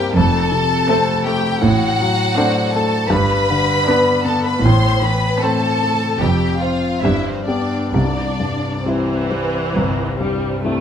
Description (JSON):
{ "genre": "classical, romantic movement for piano and orchestra", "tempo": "65-83 BPM", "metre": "4/4", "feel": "rubato", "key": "C major", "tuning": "A4 = 441 Hz", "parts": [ { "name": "clear grand piano", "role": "melody", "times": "0.0-10.8 s", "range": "C2 to C5", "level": "-18 LUFS", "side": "left 2 dB", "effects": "none" }, { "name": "warm symphonic violin section", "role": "melody", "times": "0.0-10.6 s", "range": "C5 to C6", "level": "-22 LUFS", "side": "left 2 dB", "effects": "none" }, { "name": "warm symphonic violin section", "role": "second line", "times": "0.0-10.6 s", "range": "C4 to C5", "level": "-23 LUFS", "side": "left 1 dB", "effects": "none" }, { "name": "rich symphonic cello section", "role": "bass", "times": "0.2-10.5 s", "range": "F2 to C3", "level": "-21 LUFS", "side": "right 3 dB", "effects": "none" }, { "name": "rich symphonic double bass section", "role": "bass", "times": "0.2-10.5 s", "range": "F1 to C2", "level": "-23 LUFS", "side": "right 4 dB", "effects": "none" }, { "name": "rich symphonic viola section", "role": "accompaniment", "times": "0.9-10.8 s", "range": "E3 to D4", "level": "-24 LUFS", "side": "right 2 dB", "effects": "none" }, { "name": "timpani", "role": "percussion", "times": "7.9-9.3 s", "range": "C3", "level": "-27 LUFS", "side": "left 2 dB", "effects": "none" } ], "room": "moderate recital hall reverb, RT60 1.6 s", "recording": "close, detailed microphones", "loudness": "-15 LUFS", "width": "side -8 dB against mid", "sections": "0.0-10.8 A section", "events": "none", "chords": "0.2 F; 1.6 D7/A; 3.1 G; 4.6 Am; 6.2 F; 7.0 G; 7.9 C" }